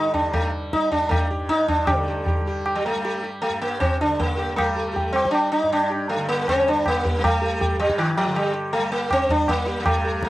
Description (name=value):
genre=indian classical, Hindustani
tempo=158 BPM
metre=7/4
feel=straight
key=G raga darbari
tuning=A4 = 441 Hz
part: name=sitar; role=melody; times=0.0-10.3 s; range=Eb3 to G4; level=-22 LUFS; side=equal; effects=cassette tape
part: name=tanpura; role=drone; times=0.0-10.3 s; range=G2 to G3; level=-32 LUFS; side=equal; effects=stereo widening, cassette tape
part: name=tabla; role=percussion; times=0.1-10.3 s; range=none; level=-24 LUFS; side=equal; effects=none
room=moderate studio reverb, RT60 0.5 s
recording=home recording on cassette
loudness=-20 LUFS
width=side -16 dB against mid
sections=0.0-1.9 A section; 1.9-10.3 B section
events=speeding up 0.0-10.3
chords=none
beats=0.33 0.71 1.10 1.49 | 1.88 2.26 2.65 3.04 3.42 3.80 4.19 | 4.57 4.95 5.33 5.71 6.09 6.47 6.85 | 7.23 7.61 7.98 8.36 8.73 9.11 9.48 | 9.85 10.23